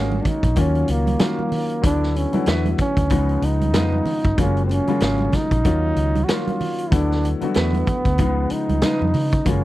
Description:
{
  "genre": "lush 1970s-style soul",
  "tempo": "94 BPM",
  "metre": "4/4",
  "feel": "swing 58% on 16ths",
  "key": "unclear",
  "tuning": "A4 = 444 Hz",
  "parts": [
    { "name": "breathy flugelhorn", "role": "melody", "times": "0.0-9.6 s", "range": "A#3 to F#4", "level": "-24 LUFS", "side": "right 2 dB", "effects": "none" },
    { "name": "warm baby grand piano", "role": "accompaniment", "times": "0.0-9.6 s", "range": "C#3 to F#4", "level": "-24 LUFS", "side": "left 5 dB", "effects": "none" },
    { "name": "electric guitar through a small old amp", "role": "riff", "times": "0.0-9.0 s", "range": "C#4 to E#5", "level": "-32 LUFS", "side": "right 4 dB", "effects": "spring reverb" },
    { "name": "vintage muted fingered electric bass", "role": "bass", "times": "0.0-9.6 s", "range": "F#1 to C#3", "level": "-21 LUFS", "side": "equal", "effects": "none" },
    { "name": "congas", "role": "percussion", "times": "0.1-9.6 s", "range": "none", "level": "-28 LUFS", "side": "right 4 dB", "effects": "none" },
    { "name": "vintage drum kit", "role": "drums", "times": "0.3-9.6 s", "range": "hi-hat, kick drum, snare drum", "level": "-22 LUFS", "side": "equal", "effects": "none" }
  ],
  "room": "light reverb",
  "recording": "dry, close 1970s-style studio recording",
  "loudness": "-17 LUFS",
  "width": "side -16 dB against mid",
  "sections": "0.0-9.6 A section",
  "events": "none",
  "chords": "0.0 F#maj9; 0.6 D#m9; 1.8 D69; 3.1 C#9; 4.4 F#maj9; 5.7 D#m9; 6.9 D69; 8.2 C#9",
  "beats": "0.57 1.21 | 1.84 2.48 3.11 3.75 | 4.38 5.02 5.65 6.29 | 6.92 7.56 8.19 8.83 | 9.46"
}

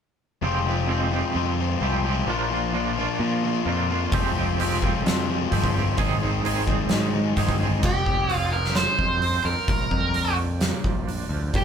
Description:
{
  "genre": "quiet-loud alternative rock",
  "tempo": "130 BPM",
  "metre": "4/4",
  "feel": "straight",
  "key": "F dorian",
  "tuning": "A4 = 441 Hz",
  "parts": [
    { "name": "twangy electric guitar", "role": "arpeggios", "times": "0.4-11.6 s", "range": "F2 to Ab4", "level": "-30 LUFS", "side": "right 8 dB", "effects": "tremolo" },
    { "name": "overdriven semi-hollow guitar", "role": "riff", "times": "0.4-7.8 s", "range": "F2 to F4", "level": "-25 LUFS", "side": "left 6 dB", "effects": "none" },
    { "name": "growling picked electric bass", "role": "bass", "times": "0.4-11.6 s", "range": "F1 to Bb2", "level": "-26 LUFS", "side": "equal", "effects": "overdrive" },
    { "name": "oversized low-tuned drum kit", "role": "drums", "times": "4.1-11.6 s", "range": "crash cymbal, hi-hat, kick drum, snare drum", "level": "-26 LUFS", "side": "equal", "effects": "none" },
    { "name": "octave-fuzz lead guitar", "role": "melody", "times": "7.9-11.6 s", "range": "G4 to C5", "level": "-24 LUFS", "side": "right 2 dB", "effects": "distortion" }
  ],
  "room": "light reverb",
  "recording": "band playing live in one room",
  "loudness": "-21 LUFS",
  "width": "side -7 dB against mid",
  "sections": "0.4-7.8 A section; 7.8-11.6 B section",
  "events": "none",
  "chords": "0.4 Fmadd9; 2.3 Bb; 4.1 Fmadd9; 6.0 Ab; 7.8 Fmadd9; 9.7 Bb",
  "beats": "| 0.42 0.89 1.35 1.81 | 2.27 2.74 3.20 3.66 | 4.13 4.59 5.05 5.51 | 5.98 6.44 6.90 7.37 | 7.83 8.29 8.76 9.22 | 9.68 10.14 10.61 11.07 | 11.54"
}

